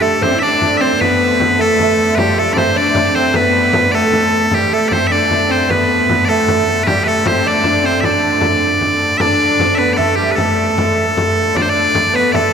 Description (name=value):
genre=medieval dance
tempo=102 BPM (dotted quarters)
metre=6/8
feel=straight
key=unclear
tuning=A4 = 440 Hz
part: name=loud bright bagpipes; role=melody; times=0.0-12.5 s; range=G4 to E5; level=-14 LUFS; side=equal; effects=none
part: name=lute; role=second line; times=0.0-12.5 s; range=G3 to D4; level=-19 LUFS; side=right 4 dB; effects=none
part: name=rich viola da gamba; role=second line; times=0.0-12.5 s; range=F3 to E4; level=-20 LUFS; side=left 3 dB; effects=none
part: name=dark hurdy-gurdy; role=drone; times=0.0-12.5 s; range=D3 to A3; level=-24 LUFS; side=right 2 dB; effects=none
part: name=frame drum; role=percussion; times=0.2-12.5 s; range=none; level=-20 LUFS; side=left 1 dB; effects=none
room=wet cathedral reverb, RT60 6.4 s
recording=recorded in a church or concert hall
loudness=-11 LUFS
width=side -7 dB against mid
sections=0.0-9.2 A section; 9.2-12.5 B section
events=none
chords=none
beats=0.42 | 1.01 1.59 | 2.18 2.77 | 3.35 3.94 | 4.52 5.11 | 5.70 6.28 | 6.87 7.45 | 8.04 8.62 | 9.21 9.79 | 10.38 10.96 | 11.55 12.14